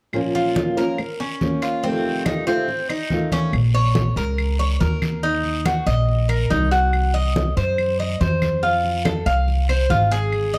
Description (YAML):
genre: latin, Cuban son and guajira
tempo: 141 BPM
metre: 4/4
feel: straight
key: Bb harmonic minor, Bb minor from 3.5 s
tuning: A4 = 440 Hz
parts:
  - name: flamenco guitar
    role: accompaniment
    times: 0.1-3.5 s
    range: F2 to C5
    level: -25 LUFS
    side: equal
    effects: none
  - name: claves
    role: percussion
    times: 0.1-10.5 s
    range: none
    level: -36 LUFS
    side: equal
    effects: none
  - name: congas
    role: percussion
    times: 0.1-10.6 s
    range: none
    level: -28 LUFS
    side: equal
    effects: none
  - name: guiro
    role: percussion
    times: 0.1-10.6 s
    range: none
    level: -38 LUFS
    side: equal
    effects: none
  - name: Cuban tres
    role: arpeggios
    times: 0.3-10.6 s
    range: C4 to F5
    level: -25 LUFS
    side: equal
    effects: none
  - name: upright bass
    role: bass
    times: 3.5-10.6 s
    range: Ab1 to Gb2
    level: -23 LUFS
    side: equal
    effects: none
room: light reverb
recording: dark, warm production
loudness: -20 LUFS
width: mono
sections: 0.1-3.5 A section; 3.5-10.6 B section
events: none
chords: 0.1 Bbmadd9; 1.8 F7; 3.5 Bbm; 5.2 Ebm; 6.9 Cdim; 8.6 F